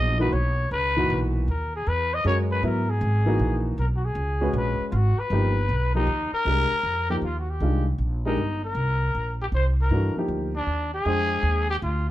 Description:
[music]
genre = modal jazz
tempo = 156 BPM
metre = 3/4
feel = swing 66% on 8ths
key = C# dorian, C minor from 6.5 s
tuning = A4 = 439 Hz
[part]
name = growling trumpet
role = melody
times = 0.0-12.1 s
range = D4 to D#5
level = -27 LUFS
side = left 2 dB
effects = none
[part]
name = warm baby grand piano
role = accompaniment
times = 0.0-11.7 s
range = A#2 to G5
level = -28 LUFS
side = equal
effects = none
[part]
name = upright bass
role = bass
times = 0.0-12.1 s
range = G1 to G#2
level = -24 LUFS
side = equal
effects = none
[sound]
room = light reverb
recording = close, detailed microphones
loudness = -22 LUFS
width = side -14 dB against mid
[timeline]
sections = 0.0-6.5 A section; 6.5-12.1 B section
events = none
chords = 0.0 C#m11; 5.3 G7alt; 6.5 Cm9; 11.1 Fm9

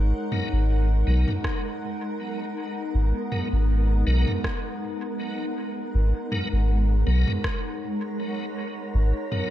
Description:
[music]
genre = ambient dub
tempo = 80 BPM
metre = 4/4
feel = swing 55% on 16ths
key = G# minor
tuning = A4 = 440 Hz
[part]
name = granular cloud pad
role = sustained chords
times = 0.0-9.5 s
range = G#3 to F#5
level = -30 LUFS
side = equal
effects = built-in reverb
[part]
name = warm sub bass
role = bass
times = 0.0-9.1 s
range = G#1 to B1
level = -20 LUFS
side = equal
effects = none
[part]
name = wind-like tuned noise texture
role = texture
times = 0.7-9.5 s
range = A#4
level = -39 LUFS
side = equal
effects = built-in reverb
[part]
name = tonewheel organ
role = stabs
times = 0.3-9.5 s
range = F#3 to A#4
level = -34 LUFS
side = left 3 dB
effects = overdrive, chorus vibrato, slow rotary speaker, dub echo
[part]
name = organic electronic drum kit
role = drums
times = 0.3-9.5 s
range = rim click, toms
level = -32 LUFS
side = equal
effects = dub echo
[part]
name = electronic kick drum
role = drums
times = 1.4-7.6 s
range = none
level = -29 LUFS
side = equal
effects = none
[sound]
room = digital ambience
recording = none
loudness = -23 LUFS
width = side -13 dB against mid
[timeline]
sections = 0.0-9.5 A section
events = none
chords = 0.0 G#m9

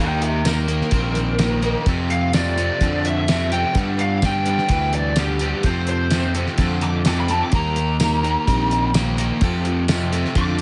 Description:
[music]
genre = classic rock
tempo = 127 BPM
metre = 4/4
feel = straight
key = unclear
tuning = A4 = 439 Hz
[part]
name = lead guitar through a small cranked amp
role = melody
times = 0.0-10.5 s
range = G4 to D6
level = -26 LUFS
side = equal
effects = overdrive, digital delay
[part]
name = picked plugged-in swing-style acoustic guitar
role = accompaniment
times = 0.0-10.6 s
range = G2 to B4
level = -33 LUFS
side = equal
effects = none
[part]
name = biting overdriven guitar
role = riff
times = 0.0-10.6 s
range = F2 to C4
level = -26 LUFS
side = equal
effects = none
[part]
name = fuzz fingered electric bass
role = bass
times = 0.0-10.6 s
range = Bb1 to G2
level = -25 LUFS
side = equal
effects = overdrive
[part]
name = damped 70s drum kit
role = drums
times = 0.2-10.6 s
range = hi-hat, kick drum, snare drum, tambourine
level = -24 LUFS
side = equal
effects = none
[sound]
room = light reverb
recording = nothing above 11.0 kHz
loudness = -20 LUFS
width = mono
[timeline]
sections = 0.0-10.6 A section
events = lead electric guitar solo 0.0-10.6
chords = 0.0 Eb; 1.9 F; 3.8 G; 5.6 F; 7.5 Eb; 9.4 F

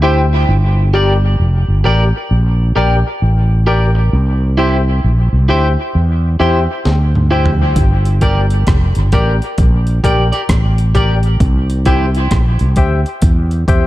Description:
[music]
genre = dub reggae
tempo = 66 BPM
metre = 4/4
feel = swing 63% on 16ths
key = G dorian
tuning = A4 = 441 Hz
[part]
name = electric guitar at the edge of break-up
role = accompaniment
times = 0.0-12.1 s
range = E4 to D5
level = -21 LUFS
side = right 3 dB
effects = lush chorus, dub echo
[part]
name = percussive organ stab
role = stabs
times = 0.0-13.9 s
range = G4 to G5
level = -20 LUFS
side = left 4 dB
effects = chorus, dub echo
[part]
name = fretless electric bass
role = bass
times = 0.0-13.9 s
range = F1 to E2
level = -12 LUFS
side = equal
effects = none
[part]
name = breakbeat sampler-style drum kit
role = drums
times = 6.9-13.9 s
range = hi-hat, kick drum, rim click, snare drum, toms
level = -14 LUFS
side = equal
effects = none
[sound]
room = digital ambience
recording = echo-heavy mix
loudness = -11 LUFS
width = side -16 dB against mid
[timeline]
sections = 0.0-13.9 A section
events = drum fill 6.9-7.8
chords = 0.5 Gm; 4.1 C; 7.8 Gm; 11.4 C

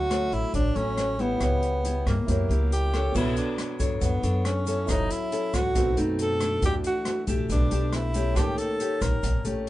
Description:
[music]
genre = bossa nova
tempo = 138 BPM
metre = 4/4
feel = straight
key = B minor from 3.1 s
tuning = A4 = 440 Hz
[part]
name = breathy tenor saxophone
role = melody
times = 0.0-9.5 s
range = Bb3 to A#4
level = -28 LUFS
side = equal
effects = none
[part]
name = nylon-string guitar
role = accompaniment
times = 0.0-9.7 s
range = A2 to C#5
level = -30 LUFS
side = left 2 dB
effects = none
[part]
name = warm grand piano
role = accompaniment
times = 0.0-9.7 s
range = A#3 to A5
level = -35 LUFS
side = right 3 dB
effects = none
[part]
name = upright bass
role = bass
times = 0.0-9.7 s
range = F#1 to G2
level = -27 LUFS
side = equal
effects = none
[part]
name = open jazz drum kit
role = drums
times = 0.1-9.7 s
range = crash cymbal, hi-hat, kick drum, rim click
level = -30 LUFS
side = equal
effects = none
[part]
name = tube shaker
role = percussion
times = 3.2-9.7 s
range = none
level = -46 LUFS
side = right 7 dB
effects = none
[sound]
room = light reverb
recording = band playing live in one room, nothing above 10.4 kHz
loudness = -23 LUFS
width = side -15 dB against mid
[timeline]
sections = 0.0-3.1 A section; 3.1-9.7 B section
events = none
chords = 0.0 Dmaj7; 1.4 C#m7b5; 2.3 F#7b9; 3.1 Bm9; 4.9 F#m7; 5.8 B7b9; 6.6 Em11; 8.4 D#7#11

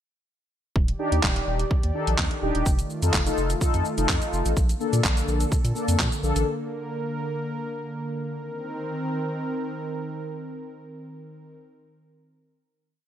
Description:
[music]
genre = dance-pop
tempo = 126 BPM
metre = 4/4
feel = straight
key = C dorian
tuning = A4 = 439 Hz
[part]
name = warm analog pad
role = sustained chords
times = 0.8-11.6 s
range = D3 to D5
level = -31 LUFS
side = right 1 dB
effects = chorus, sidechain pumping
[part]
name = saturated sub bass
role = bass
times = 0.8-6.4 s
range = Eb1 to Bb2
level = -25 LUFS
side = equal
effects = sidechain pumping
[part]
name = pop drum kit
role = drums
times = 0.8-6.5 s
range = handclaps, hi-hat, kick drum, shaker, snare drum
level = -25 LUFS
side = equal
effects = none
[part]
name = mellow synth brass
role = accompaniment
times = 1.0-6.5 s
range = Bb3 to A4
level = -28 LUFS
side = left 3 dB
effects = chorus, sidechain pumping
[sound]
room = light reverb, digital ambience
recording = bright 1980s-style digital production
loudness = -23 LUFS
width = side -10 dB against mid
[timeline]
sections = 0.8-8.4 bridge; 8.4-12.2 final chord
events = none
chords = 0.8 Ebmaj7; 2.7 F7; 4.6 Bbmaj7; 8.4 Cm7

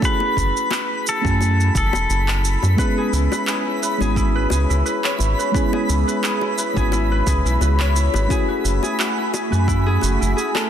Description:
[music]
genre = sunset chillout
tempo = 87 BPM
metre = 4/4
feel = swing 54% on 16ths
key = F# minor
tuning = A4 = 442 Hz
[part]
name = pedal steel guitar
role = melody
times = 0.0-2.8 s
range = A4 to B4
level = -23 LUFS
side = left 2 dB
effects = digital delay
[part]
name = mellow FM electric piano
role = accompaniment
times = 0.0-10.7 s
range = G#3 to G#5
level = -25 LUFS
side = moving between left 4 dB and right 6 dB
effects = chorus, phaser, auto-pan, cassette tape, low-pass filter, digital delay
[part]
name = electronic kick drum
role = drums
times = 0.0-9.8 s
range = none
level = -22 LUFS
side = equal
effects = none
[part]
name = electronic shaker and handclaps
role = drums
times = 0.0-10.7 s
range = none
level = -26 LUFS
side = right 2 dB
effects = none
[part]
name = twinkling granular texture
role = texture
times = 0.0-10.7 s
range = B5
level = -29 LUFS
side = right 1 dB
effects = built-in reverb
[part]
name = bongos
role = percussion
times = 0.2-10.7 s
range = none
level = -33 LUFS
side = left 6 dB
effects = none
[part]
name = round analog bass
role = bass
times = 0.4-10.3 s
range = E1 to F#2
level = -19 LUFS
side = equal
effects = none
[part]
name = airy breathy pad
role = sustained chords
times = 3.1-10.7 s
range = A3 to B5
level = -27 LUFS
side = right 1 dB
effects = chorus
[part]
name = Celtic harp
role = arpeggios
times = 2.8-10.7 s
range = E4 to C#5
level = -25 LUFS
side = left 2 dB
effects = digital delay
[sound]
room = moderate concert hall reverb, RT60 2.4 s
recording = dense, heavily limited modern master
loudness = -17 LUFS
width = side -9 dB against mid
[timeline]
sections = 0.0-10.7 A section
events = none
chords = 0.0 F#m9; 2.8 C#m7; 8.3 F#m9

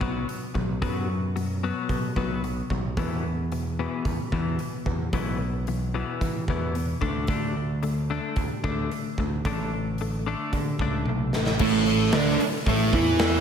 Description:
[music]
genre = quiet-loud alternative rock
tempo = 111 BPM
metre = 4/4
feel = straight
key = unclear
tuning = A4 = 440 Hz
[part]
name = twelve-string electric guitar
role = arpeggios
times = 0.0-11.6 s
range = E2 to D4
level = -30 LUFS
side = left 5 dB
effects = slapback echo
[part]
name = overdriven picked electric bass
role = bass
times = 0.0-13.4 s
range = A1 to E3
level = -29 LUFS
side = right 1 dB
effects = none
[part]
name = big rock drum kit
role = drums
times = 0.0-13.3 s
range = crash cymbal, hi-hat, kick drum, snare drum, toms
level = -28 LUFS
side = equal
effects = none
[part]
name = fuzz guitar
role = riff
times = 11.6-13.4 s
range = A2 to E4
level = -27 LUFS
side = left 8 dB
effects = distortion
[part]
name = fuzz guitar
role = riff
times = 11.6-13.4 s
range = A2 to E4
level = -27 LUFS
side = right 2 dB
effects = distortion
[part]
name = thick fuzz guitar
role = riff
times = 11.6-13.4 s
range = A2 to E4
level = -24 LUFS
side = right 11 dB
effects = distortion
[sound]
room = moderate lush hall reverb, RT60 1.9 s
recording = big arena sound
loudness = -24 LUFS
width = side -7 dB against mid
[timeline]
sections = 0.0-11.6 A section; 11.6-13.4 B section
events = drum fill 11.1-11.6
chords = 0.0 B5; 3.0 E5; 7.0 D5; 11.6 A5

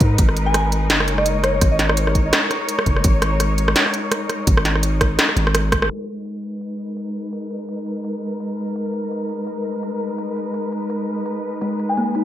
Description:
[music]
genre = half-time drum and bass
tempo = 168 BPM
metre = 4/4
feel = swing 57% on 16ths, half-time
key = G# minor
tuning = A4 = 440 Hz
[part]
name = muted chamber cello section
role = sustained chords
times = 0.0-12.2 s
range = G#3 to C#5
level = -24 LUFS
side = left 1 dB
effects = sidechain pumping
[part]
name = long sustained 808-style bass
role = bass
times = 0.0-5.9 s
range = F#1 to G#2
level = -20 LUFS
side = equal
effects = none
[part]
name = electronic kick drum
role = drums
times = 0.0-5.8 s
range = none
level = -18 LUFS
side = equal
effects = studio reverb
[part]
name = industrial drum kit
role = drums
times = 0.0-12.2 s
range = hi-hat, rim click, snare drum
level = -20 LUFS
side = right 1 dB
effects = studio reverb
[part]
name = soft synth bell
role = melody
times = 0.5-2.0, 11.9-12.1 s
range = C#5 to G#5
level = -23 LUFS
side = equal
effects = chorus, vintage 12-bit sampler grit, digital delay
[part]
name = buzzing kalimba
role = arpeggios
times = 11.6-12.2 s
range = G#3 to D#4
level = -21 LUFS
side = left 1 dB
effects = vintage 12-bit sampler grit
[sound]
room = moderate plate reverb, RT60 1.7 s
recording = bright 1980s-style digital production, low-pass filter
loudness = -18 LUFS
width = side -12 dB against mid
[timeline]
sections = 0.0-5.9 A section; 5.9-12.2 B section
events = drum fill 5.2-5.9; band accent 5.8; filter sweep 5.9-12.2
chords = 0.0 G#m

